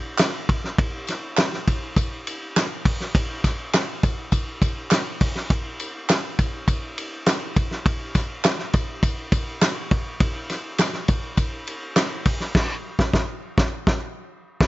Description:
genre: soul.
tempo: 102 BPM.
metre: 4/4.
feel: straight.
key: none.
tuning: none.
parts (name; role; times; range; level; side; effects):
warm soul drum kit; drums; 0.2-14.7 s; crash cymbal, hi-hat, kick drum, ride cymbal, snare drum; -21 LUFS; equal; none.
handclaps and tambourine; percussion; 0.2-12.4 s; none; -29 LUFS; right 2 dB; none.
room: little or no reverb.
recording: nothing above 7.6 kHz.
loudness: -21 LUFS.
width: side -17 dB against mid.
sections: 0.0-14.7 A section.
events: band accent 12.6-14.7.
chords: none.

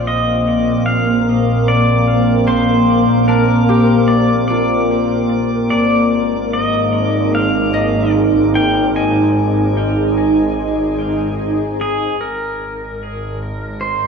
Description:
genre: ambient.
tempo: 74 BPM.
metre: 4/4.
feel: straight.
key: Ab lydian.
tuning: A4 = 440 Hz.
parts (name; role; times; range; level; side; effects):
pedal steel guitar; melody; 0.0-14.1 s; Ab4 to Ab5; -20 LUFS; left 1 dB; tape echo.
shimmering ambient pad; sustained chords; 0.0-14.1 s; Ab3 to F5; -16 LUFS; equal; chorus, built-in reverb.
clear chamber double bass section; bass; 0.0-14.1 s; Ab1 to Bb1; -20 LUFS; equal; none.
drifting glass-harmonics texture; texture; 0.0-12.2 s; C4 to D6; -24 LUFS; right 1 dB; chorus, built-in reverb.
concert harp; arpeggios; 2.5-11.1 s; D4 to F5; -26 LUFS; left 2 dB; tape echo.
room: wet plate reverb, RT60 2.2 s.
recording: echo-heavy mix.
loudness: -13 LUFS.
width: side -5 dB against mid.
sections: 0.0-12.2 A section; 12.2-14.1 B section.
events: none.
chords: 0.0 Bbadd9; 5.7 Ab; 12.2 Ab6.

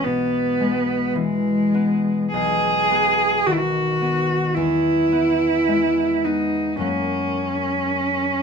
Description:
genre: classical, romantic duo for cello and harp.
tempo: 53 BPM.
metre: 4/4.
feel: rubato.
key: unclear.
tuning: A4 = 440 Hz.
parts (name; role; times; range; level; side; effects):
clear cello; melody; 0.0-8.4 s; G#3 to G#4; -19 LUFS; right 1 dB; none.
concert harp; accompaniment; 0.0-8.4 s; B1 to B3; -25 LUFS; left 3 dB; none.
room: light reverb.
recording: close, detailed microphones.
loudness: -18 LUFS.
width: side -6 dB against mid.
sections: 0.0-8.4 A section.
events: none.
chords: 0.0 E/B; 2.3 B; 4.6 E; 6.8 F#.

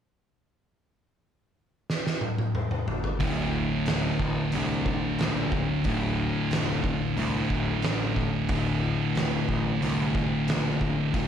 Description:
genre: stoner and doom metal.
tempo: 91 BPM.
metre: 4/4.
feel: straight.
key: unclear.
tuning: A4 = 442 Hz.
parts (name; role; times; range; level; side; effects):
oversized low-tuned drum kit; drums; 1.9-11.3 s; hi-hat, kick drum, snare drum, toms; -30 LUFS; equal; none.
thick fuzz guitar; riff; 3.2-11.3 s; D2 to D3; -28 LUFS; left 6 dB; distortion.
thick fuzz guitar; riff; 3.2-11.3 s; D2 to D3; -29 LUFS; right 8 dB; distortion.
fuzz picked electric bass; bass; 3.2-11.3 s; D1 to C2; -33 LUFS; equal; overdrive.
room: moderate studio ambience, RT60 0.5 s.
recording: none.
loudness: -24 LUFS.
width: side -9 dB against mid.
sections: 0.6-3.2 A section; 3.2-11.3 B section.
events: drum fill 1.9-3.2.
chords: 0.6 N.C.; 3.2 D5.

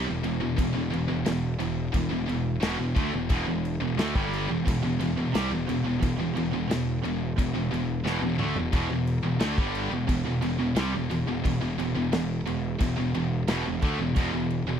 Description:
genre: heavy metal.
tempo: 88 BPM.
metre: 4/4.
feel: straight.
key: E minor.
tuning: A4 = 440 Hz.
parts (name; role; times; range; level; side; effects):
heavy high-gain guitar; riff; 0.0-14.8 s; E2 to A3; -31 LUFS; left 10 dB; distortion.
heavy high-gain guitar; riff; 0.0-14.8 s; E2 to A3; -34 LUFS; equal; distortion.
tight distorted guitar; riff; 0.0-14.8 s; E2 to A3; -31 LUFS; right 10 dB; distortion.
fuzz picked electric bass; bass; 0.0-14.8 s; E1 to D2; -30 LUFS; equal; overdrive.
modern studio drum kit; drums; 0.2-14.7 s; crash cymbal, kick drum, snare drum, toms; -29 LUFS; equal; none.
room: little or no reverb.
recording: dry, close 1970s-style studio recording.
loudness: -24 LUFS.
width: side -8 dB against mid.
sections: 0.0-14.8 A section.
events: drum fill 8.1-8.7.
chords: 0.0 Em.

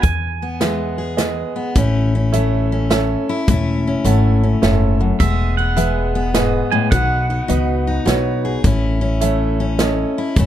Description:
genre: honky-tonk and classic country.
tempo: 105 BPM.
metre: 3/4.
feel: swing 65% on 8ths.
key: unclear.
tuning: A4 = 440 Hz.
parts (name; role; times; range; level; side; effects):
twangy electric guitar; second line; 0.0-1.5, 5.2-8.0 s; E5 to G#5; -23 LUFS; right 6 dB; tape echo.
picked steel-string acoustic guitar; accompaniment; 0.0-10.5 s; E2 to G#4; -20 LUFS; left 4 dB; none.
upright bass; bass; 0.0-10.5 s; E1 to E2; -19 LUFS; equal; none.
natural country drum kit; drums; 0.0-10.5 s; hi-hat, kick drum, snare drum; -19 LUFS; equal; none.
warm concert grand piano; accompaniment; 0.6-10.3 s; F#4 to F#5; -22 LUFS; right 7 dB; none.
room: little or no reverb.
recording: close, detailed microphones.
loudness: -15 LUFS.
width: side -11 dB against mid.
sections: 0.0-1.8 A section; 1.8-10.5 B section.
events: none.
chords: 0.0 E; 1.8 A; 5.2 E; 6.9 B; 8.6 A.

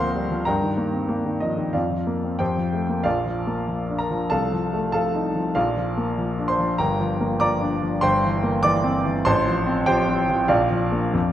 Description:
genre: classical, virtuoso piano study.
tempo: 96 BPM.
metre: 2/4.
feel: rubato.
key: Bb major.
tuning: A4 = 440 Hz.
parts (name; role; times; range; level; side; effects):
warm grand piano; solo; 0.0-11.3 s; G1 to D6; -20 LUFS; equal; none.
room: moderate concert hall reverb, RT60 1.7 s.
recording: none.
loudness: -20 LUFS.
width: side -11 dB against mid.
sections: 0.0-3.0 A section; 3.0-11.3 B section.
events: none.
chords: 0.5 Eb/G; 1.7 Bb/F; 2.4 F; 3.0 Bb; 4.3 F7/C; 5.6 Bb; 6.8 Gm7; 8.0 C7/G; 9.3 F/A; 10.5 Bb.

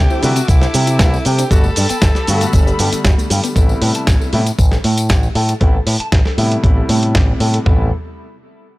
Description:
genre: nu-disco, nu disco.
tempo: 117 BPM.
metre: 4/4.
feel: straight.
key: A dorian.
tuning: A4 = 441 Hz.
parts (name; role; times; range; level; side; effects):
growling tenor saxophone; melody; 0.0-3.1 s; E4 to A4; -24 LUFS; equal; tape echo.
warm concert grand piano; accompaniment; 0.0-7.9 s; C3 to F#4; -22 LUFS; left 1 dB; sidechain pumping, tape echo.
dark studio string section; sustained chords; 0.0-3.5 s; A4 to D6; -28 LUFS; left 1 dB; sidechain pumping.
soft round pluck; arpeggios; 0.0-3.6 s; F#3 to E4; -27 LUFS; left 3 dB; none.
picked electric bass with an envelope filter; bass; 0.0-7.9 s; G1 to C3; -16 LUFS; equal; none.
electric guitar at the edge of break-up; riff; 0.1-7.9 s; G3 to A5; -28 LUFS; right 2 dB; wide subtle chorus, vintage 12-bit sampler grit, low-pass filter, tape echo.
tambourine; percussion; 0.1-5.6 s; none; -30 LUFS; left 5 dB; none.
dusty soul sampler-style drum kit; drums; 0.2-7.6 s; hi-hat, shaker, snare drum; -20 LUFS; equal; none.
dusty soul sampler-style drum kit; drums; 0.5-7.8 s; kick drum, toms; -13 LUFS; equal; none.
room: digital ambience.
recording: dry, gritty hardware recording.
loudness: -12 LUFS.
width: side -19 dB against mid.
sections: 0.0-3.6 A section; 3.6-7.7 B section; 7.7-8.8 C section.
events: drop 0.0-3.6; filter sweep on clean electric guitar 3.6-7.7.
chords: 0.0 C69; 1.5 Gmaj9; 3.6 Am7.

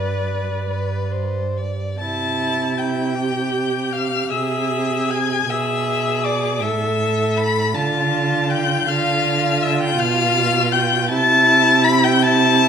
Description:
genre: classical, slow romantic movement for string quartet.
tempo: 53 BPM (dotted quarters).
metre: 6/8.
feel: uneven beats, rubato.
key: C major.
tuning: A4 = 438 Hz.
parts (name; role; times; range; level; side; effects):
warm violin; melody; 0.0-12.7 s; D5 to B6; -20 LUFS; left 5 dB; none.
rich violin; second line; 0.0-12.7 s; B4 to B5; -24 LUFS; left 3 dB; none.
rich viola; accompaniment; 0.0-12.7 s; E4 to B4; -24 LUFS; right 1 dB; none.
warm cello; bass; 0.0-12.7 s; G2 to D3; -21 LUFS; right 4 dB; none.
room: moderate recital hall reverb, RT60 1.5 s.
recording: minimal, uncompressed stereo recording.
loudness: -16 LUFS.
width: side -7 dB against mid.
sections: 0.0-2.0 A section; 2.0-12.7 B section.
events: none.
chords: 0.0 G; 2.0 C; 4.3 E/C; 6.6 A5; 7.7 Dm; 8.9 Bdim; 11.1 C.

